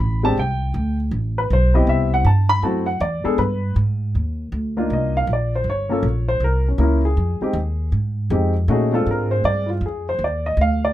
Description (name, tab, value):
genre	jazz piano trio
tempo	159 BPM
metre	4/4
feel	swing 63% on 8ths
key	C minor from 4.1 s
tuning	A4 = 440 Hz
part	warm baby grand piano	melody	0.0-10.9 s	G#3 to B5	-21 LUFS	left 1 dB	none
part	upright bass	bass	0.0-10.9 s	G1 to Bb2	-20 LUFS	equal	none
room	little or no reverb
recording	close, detailed microphones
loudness	-18 LUFS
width	side -14 dB against mid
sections	0.0-4.1 A section; 4.1-10.9 B section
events	grand piano solo 4.1-10.9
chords	0.4 Csus2; 1.1 Am7; 2.6 F#m7b5; 3.4 G; 4.1 Cm11; 5.7 Gdim; 6.4 C7b9; 7.2 Fm9; 8.7 Bb9; 10.2 Ebmaj7sus2